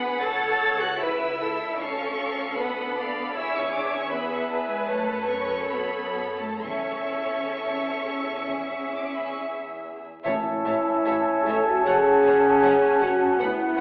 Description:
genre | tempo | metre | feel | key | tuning
classical, slow romantic movement for symphony orchestra | 65-80 BPM | 4/4 | rubato | A major | A4 = 441 Hz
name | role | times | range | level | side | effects
rich chamber violin section | melody | 0.0-13.8 s | G#5 to A6 | -36 LUFS | equal | none
rich chamber violin section | second line | 0.0-13.8 s | G#4 to F#5 | -34 LUFS | equal | none
rich symphonic viola section | accompaniment | 0.0-13.8 s | B3 to E5 | -33 LUFS | equal | none
clear symphonic double bass section | bass | 0.0-13.8 s | F#1 to F#2 | -42 LUFS | equal | none
rich symphonic cello section | bass | 0.0-13.5 s | D2 to A4 | -35 LUFS | equal | none
timpani | percussion | 6.6-11.4 s | E2 to A2 | -46 LUFS | equal | none
bright clarinet | second line | 10.2-13.8 s | C#5 to F#5 | -33 LUFS | equal | none
dark cor anglais | second line | 10.3-13.8 s | E5 to F#5 | -31 LUFS | equal | none
mellow hollow flute section | second line | 10.3-13.8 s | A5 to B5 | -29 LUFS | equal | none
clear bassoon | accompaniment | 10.3-13.8 s | B3 to C#4 | -31 LUFS | equal | none
mellow French horn section | sustained chords | 10.3-13.8 s | E4 to A4 | -24 LUFS | equal | none
room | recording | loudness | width
wet recital hall reverb, RT60 1.5 s | heard from further back in the room, vinyl crackle, telephone sound | -25 LUFS | mono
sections
0.0-10.3 A section; 10.3-13.8 B section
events
none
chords
0.2 A/C#; 1.8 Bm7b5/D; 3.4 E; 4.9 F#m; 6.6 A/E; 10.3 A; 11.8 F#m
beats
| 0.25 1.03 1.80 2.58 | 3.37 4.12 4.89 5.73 | 6.64 7.56 8.47 9.39 | 10.25 11.05 11.85 12.62 | 13.39

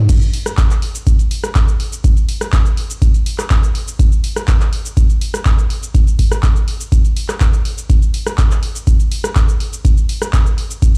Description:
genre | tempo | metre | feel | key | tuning
house | 123 BPM | 4/4 | straight | none | none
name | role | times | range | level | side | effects
electronic kick drum | drums | 0.1-10.9 s | none | -15 LUFS | equal | none
punchy analog drum machine | drums | 0.1-11.0 s | crash cymbal, handclaps, hi-hat, rim click, shaker | -24 LUFS | equal | none
room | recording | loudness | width
little or no reverb | played on a big sound system in a bare room, stone room reverb | -15 LUFS | mono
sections
0.1-11.0 A section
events
drop 0.1-11.0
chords
none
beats
| 0.09 0.58 1.07 1.55 | 2.04 2.53 3.02 3.51 | 3.99 4.48 4.97 5.46 | 5.95 6.43 6.92 7.41 | 7.90 8.38 8.87 9.36 | 9.85 10.34 10.82

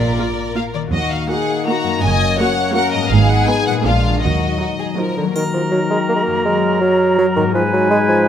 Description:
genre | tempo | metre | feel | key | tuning
cinematic, playful, whimsical film cue | 164 BPM | 3/4 | straight | Eb minor | A4 = 440 Hz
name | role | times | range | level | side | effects
rich studio violin section | melody | 0.0-5.0 s | D5 to Bb5 | -21 LUFS | left 3 dB | none
clear studio violin section | second line | 0.0-5.3 s | F4 to Eb5 | -23 LUFS | left 3 dB | none
mellow French horn section | sustained chords | 0.0-8.3 s | Eb3 to F4 | -23 LUFS | left 3 dB | none
concert harp | arpeggios | 0.0-8.3 s | Gb2 to Ab4 | -24 LUFS | left 8 dB | none
rich studio cello section | bass | 0.0-4.5 s | Eb2 to Eb3 | -22 LUFS | right 3 dB | none
warm studio double bass section | bass | 0.0-4.5 s | Gb1 to Eb2 | -19 LUFS | right 4 dB | none
warm symphonic viola section | accompaniment | 0.2-5.3 s | Gb3 to Gb4 | -25 LUFS | right 3 dB | none
mellow bassoon | accompaniment | 5.0-8.3 s | D3 to Bb3 | -17 LUFS | right 2 dB | none
clear oboe | second line | 5.4-8.3 s | Bb4 to Cb5 | -23 LUFS | right 2 dB | none
silver concert flute | second line | 5.4-8.3 s | Ab5 to Bb5 | -22 LUFS | left 1 dB | none
warm clarinet | second line | 5.4-8.3 s | Eb4 to Gb4 | -25 LUFS | left 1 dB | none
triangle | percussion | 5.4-6.0 s | none | -37 LUFS | left 1 dB | none
room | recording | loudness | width
moderate scoring stage reverb, RT60 1.8 s | none | -14 LUFS | side -9 dB against mid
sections
0.0-5.4 A section; 5.4-8.3 A section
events
none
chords
0.0 Bb; 0.9 Ebm; 2.0 Gb; 3.1 Abm; 3.9 Bb7; 4.2 Ebm; 6.5 Gb; 7.5 Abm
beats
0.18 0.55 | 0.92 1.29 1.66 | 2.02 2.39 2.76 | 3.12 3.49 3.85 | 4.23 4.61 4.99 | 5.36 5.73 6.09 | 6.46 6.82 7.18 | 7.55 7.91 8.28

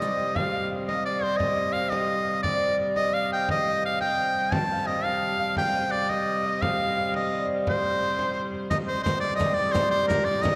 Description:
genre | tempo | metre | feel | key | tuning
medieval dance | 115 BPM (dotted quarters) | 6/8 | straight | C minor | A4 = 440 Hz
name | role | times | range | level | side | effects
bright shawm | melody | 0.0-10.6 s | Bb4 to A5 | -28 LUFS | equal | none
Celtic harp | second line | 0.0-10.6 s | C5 to A5 | -32 LUFS | equal | none
rich hurdy-gurdy | drone | 0.0-10.6 s | C3 to G3 | -34 LUFS | equal | none
frame drum | percussion | 0.0-10.6 s | none | -35 LUFS | equal | none
riq | percussion | 0.0-0.2, 8.7-10.6 s | none | -38 LUFS | equal | none
room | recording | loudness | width
wet church reverb, RT60 3.2 s | none | -26 LUFS | mono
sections
0.4-8.7 A section; 8.7-10.6 B section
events
none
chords
none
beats
| 0.36 0.88 | 1.40 1.92 | 2.45 2.97 | 3.49 4.01 | 4.53 5.05 | 5.58 6.10 | 6.62 7.14 | 7.66 8.19 | 8.71 9.23 | 9.75 10.27

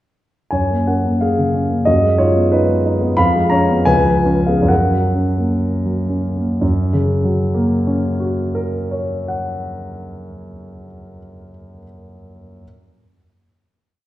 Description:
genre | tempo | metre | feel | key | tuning
classical, romantic character piece for solo piano | 58-93 BPM | 2/4 | rubato | F# major | A4 = 441 Hz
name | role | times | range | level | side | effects
dark grand piano | solo | 0.5-12.6 s | C#2 to B5 | -15 LUFS | equal | none
room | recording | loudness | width
wet recital hall reverb, RT60 1.6 s | heard from further back in the room | -14 LUFS | side -14 dB against mid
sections
0.5-6.6 A section; 6.6-10.4 final chord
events
slowing down 2.5-6.6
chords
0.5 F#; 1.9 G#m7/F#; 3.2 C#7/E#; 3.9 C#7; 4.7 F#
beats
| 0.52 1.22 | 1.88 2.53 | 3.19 3.89 | 4.70 5.61 | 6.61 7.55 | 8.47 9.39

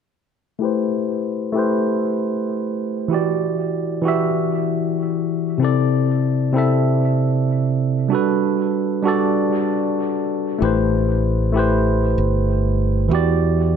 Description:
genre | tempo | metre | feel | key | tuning
sunset chillout | 96 BPM | 4/4 | swing 55% on 16ths | A dorian | A4 = 440 Hz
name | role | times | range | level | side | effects
tine electric piano | accompaniment | 0.6-13.8 s | C3 to E5 | -18 LUFS | moving between left 7 dB and right 6 dB | overdrive, auto-pan, low-pass filter, tape echo
fingered electric bass | bass | 10.6-13.8 s | G1 to E2 | -19 LUFS | equal | none
room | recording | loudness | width
wet scoring stage reverb, RT60 1.7 s | dark, warm production | -17 LUFS | side -7 dB against mid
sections
0.6-10.6 A section; 10.6-13.8 B section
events
filter sweep on tine electric piano 0.6-10.6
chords
0.6 Am9; 3.1 Em9; 5.6 C69; 8.1 Gmaj9; 10.6 Am9; 13.1 Em9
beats
| 0.62 1.24 1.87 2.49 | 3.12 3.74 4.37 4.99 | 5.62 6.24 6.87 7.49 | 8.12 8.74 9.37 9.99 | 10.62 11.24 11.87 12.49 | 13.12 13.74

